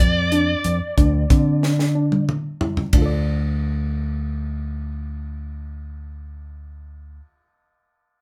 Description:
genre	progressive instrumental, band music in an uneven meter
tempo	184 BPM (eighths)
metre	11/8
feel	straight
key	D minor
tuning	A4 = 440 Hz
part	dark smooth lead guitar	melody	0.0-2.2 s	D5	-27 LUFS	equal	overdrive
part	soft round pluck	arpeggios	0.0-7.3 s	C4 to D5	-27 LUFS	equal	chorus
part	overdriven fingered electric bass	bass	0.0-7.2 s	D2 to D3	-25 LUFS	equal	none
part	tight funk drum kit	drums	0.0-3.1 s	hi-hat, kick drum, ride cymbal, snare drum, toms	-22 LUFS	equal	none
room	moderate studio ambience, RT60 0.5 s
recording	band playing live in one room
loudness	-21 LUFS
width	mono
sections	0.0-2.9 A section; 2.9-6.5 B section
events	drum fill 1.6-2.9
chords	0.0 Dm9; 2.9 Dm

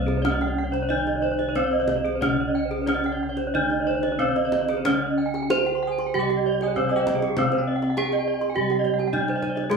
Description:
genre	Balinese gamelan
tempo	91-107 BPM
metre	4/4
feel	straight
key	C pelog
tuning	A4 = 440 Hz
part	gamelan-type bronze metallophone	melody	0.0-9.8 s	Ab3-20c to C5	-25 LUFS	right 2 dB	none
part	gamelan-type bronze metallophone	accompaniment	0.0-9.8 s	C3 to Ab3-20c	-36 LUFS	left 2 dB	none
part	gamelan-type bronze metallophone	arpeggios	0.0-9.7 s	Ab4-20c to Ab5-20c	-28 LUFS	right 6 dB	none
part	gamelan-type bossed gongs	bass	0.0-9.8 s	C2 to Ab4-20c	-31 LUFS	equal	none
part	gamelan-type bronze metallophone	arpeggios	0.1-9.8 s	G4-30c to C6	-29 LUFS	left 2 dB	none
part	kendang	percussion	0.1-9.8 s	none	-32 LUFS	left 1 dB	none
part	bell-like tine electric piano	second line	5.9-9.2 s	C4 to Ab4-20c	-32 LUFS	left 1 dB	none
room	wet studio reverb, RT60 0.6 s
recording	band playing live in one room, studio ambience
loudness	-21 LUFS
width	side -5 dB against mid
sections	0.0-9.7 A section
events	none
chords	none

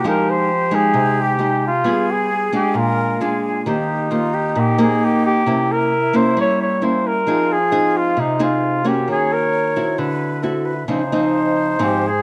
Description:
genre	bossa nova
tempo	133 BPM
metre	4/4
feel	straight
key	Eb major from 3.7 s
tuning	A4 = 438 Hz
part	clear flugelhorn	melody	0.0-12.2 s	Eb4 to Db5	-22 LUFS	equal	none
part	breathy concert flute	second line	0.0-12.2 s	Eb4 to Db5	-27 LUFS	equal	none
part	nylon-string guitar	accompaniment	0.0-12.2 s	Ab2 to Ab4	-21 LUFS	equal	none
room	wet echo chamber reverb, RT60 1.7 s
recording	none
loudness	-18 LUFS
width	mono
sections	0.0-3.7 A section; 3.7-12.2 B section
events	none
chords	0.0 Fm9; 1.8 G7b9; 2.8 Bb7; 3.7 Eb6; 5.5 C7b9; 7.3 Fm7; 9.1 Ebm7; 10.0 D9; 10.9 Dbmaj9

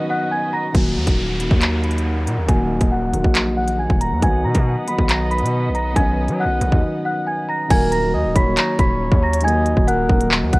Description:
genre	hip hop, drill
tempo	138 BPM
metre	4/4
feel	half-time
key	Eb minor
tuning	A4 = 440 Hz
part	felt-muted upright piano	accompaniment	0.0-10.6 s	D#3 to F#4	-23 LUFS	left 1 dB	low-pass filter
part	dark chamber string section	sustained chords	0.0-7.7 s	Eb3 to Gb5	-29 LUFS	right 1 dB	low-pass filter
part	celesta	melody	0.1-10.6 s	F#5 to Cb7	-23 LUFS	equal	low-pass filter, digital delay
part	distorted 808-style bass	bass	0.7-10.6 s	Eb1 to F#3	-22 LUFS	equal	distortion
part	drill drum kit	drums	0.7-10.6 s	crash cymbal, handclaps, hi-hat, kick drum	-18 LUFS	equal	none
part	downlifter	sound effects	0.7-4.2 s	none	-31 LUFS	equal	none
part	breathy flute-like synth lead	second line	7.7-10.3 s	Bb4 to Eb5	-24 LUFS	right 2 dB	chorus, digital delay
room	little or no reverb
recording	worn, warbling old tape, cassette tape, warbly pitch drift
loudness	-16 LUFS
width	side -23 dB against mid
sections	0.7-7.7 A section; 7.7-10.6 B section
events	break 0.0-0.7, 6.8-7.7; filter sweep 0.7-7.7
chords	0.0 B; 0.7 Ebm; 4.2 B; 7.7 Ebm

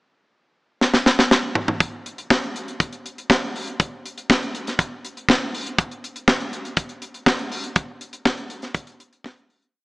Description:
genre	disco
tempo	121 BPM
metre	4/4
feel	straight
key	none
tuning	none
part	tight funk drum kit	drums	0.8-9.7 s	hi-hat, kick drum, snare drum, toms	-19 LUFS	equal	none
room	moderate echo chamber reverb, RT60 2.2 s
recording	small speaker sound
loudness	-20 LUFS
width	side -24 dB against mid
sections	0.0-1.8 pickup bar; 1.8-9.7 verse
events	drum fill 0.8-1.8; fade-out 7.8-9.7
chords	none

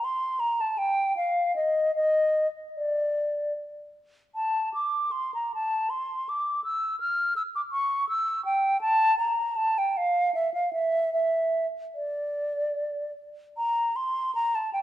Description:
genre	classical, baroque-style fantasia for unaccompanied flute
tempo	72-82 BPM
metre	3/4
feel	rubato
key	D minor from 4.4 s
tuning	A4 = 441 Hz
part	mellow hollow silver concert flute	solo	0.0-14.8 s	D5 to F6	-24 LUFS	equal	none
room	moderate recital hall reverb, RT60 1.4 s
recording	dark, warm production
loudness	-24 LUFS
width	side -13 dB against mid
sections	0.0-13.6 A section; 13.6-14.8 A section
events	none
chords	none

